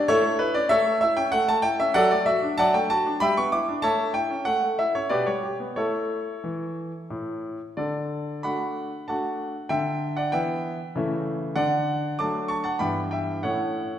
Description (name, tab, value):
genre	classical-period piano sonatina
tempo	88-99 BPM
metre	3/4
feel	rubato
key	D major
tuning	A4 = 444 Hz
part	clear concert grand piano	solo	0.0-14.0 s	G2 to D6	-22 LUFS	equal	none
room	wet recital hall reverb, RT60 1.6 s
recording	recorded in a church or concert hall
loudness	-22 LUFS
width	side -10 dB against mid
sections	0.0-7.8 A section; 7.8-14.0 B section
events	none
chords	0.1 A; 1.9 D/F#; 3.2 Em7/G; 3.8 A; 5.1 G/B; 5.8 A; 7.8 D; 9.7 Em7/D; 11.0 A/C#; 11.6 D; 12.8 Em/G; 13.4 A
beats	| 0.09 0.70 1.32 | 1.94 2.57 3.21 | 3.83 4.46 5.11 | 5.77 6.44 7.11 | 7.77 8.44 9.08 | 9.70 10.33 10.96 | 11.57 12.19 12.80 | 13.44